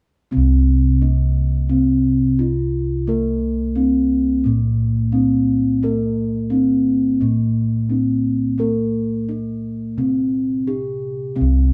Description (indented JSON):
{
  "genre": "Javanese gamelan",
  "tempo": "87 BPM",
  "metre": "4/4",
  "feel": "straight",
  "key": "C slendro",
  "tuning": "A4 = 440 Hz",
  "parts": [
    { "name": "gamelan-type bronze metallophone", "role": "melody", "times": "0.3-11.7 s", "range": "Bb3-45c to G4+25c", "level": "-22 LUFS", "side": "equal", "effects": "none" },
    { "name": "gamelan-type bronze metallophone", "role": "accompaniment", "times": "0.3-11.7 s", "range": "C3 to Bb3-45c", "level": "-25 LUFS", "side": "equal", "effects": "none" },
    { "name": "gamelan-type bossed gongs", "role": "bass", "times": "0.3-11.7 s", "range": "C2 to Bb4-45c", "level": "-22 LUFS", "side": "equal", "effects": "none" }
  ],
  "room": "moderate studio reverb, RT60 1.0 s",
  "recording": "band playing live in one room",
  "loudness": "-19 LUFS",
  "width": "mono",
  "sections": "0.3-11.7 A section",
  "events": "none",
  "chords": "none"
}